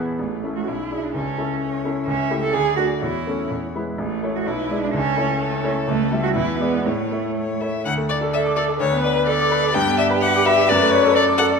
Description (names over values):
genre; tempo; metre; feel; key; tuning
quick classical-period movement for piano trio; 127 BPM; 2/4; rubato; A major, D major from 7.9 s; A4 = 440 Hz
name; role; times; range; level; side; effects
bright concert grand piano; accompaniment; 0.0-11.6 s; A1 to D6; -22 LUFS; left 1 dB; none
warm cello; second line; 0.2-11.6 s; A3 to B4; -23 LUFS; right 6 dB; none
warm violin; melody; 0.7-11.5 s; G#4 to G5; -23 LUFS; left 6 dB; none
room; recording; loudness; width
wet scoring stage reverb, RT60 1.7 s; none; -18 LUFS; side -5 dB against mid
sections
0.2-7.9 A section; 7.9-11.6 B section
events
none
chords
0.2 A; 0.7 E7/B; 1.1 A/C#; 2.1 A7/C#; 2.5 D; 3.0 A/E; 3.5 E; 4.0 A; 4.5 E7/B; 4.9 A/C#; 5.9 A7/C#; 6.4 E7; 6.9 A; 7.9 D5; 8.8 Bm/D; 9.7 G; 10.7 D/F#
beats
| 0.20 0.68 | 1.15 1.61 | 2.08 2.54 | 3.02 3.51 | 3.99 4.47 | 4.94 5.41 | 5.88 6.36 | 6.86 7.37 | 7.86 8.33 | 8.80 9.27 | 9.75 10.22 | 10.69 11.16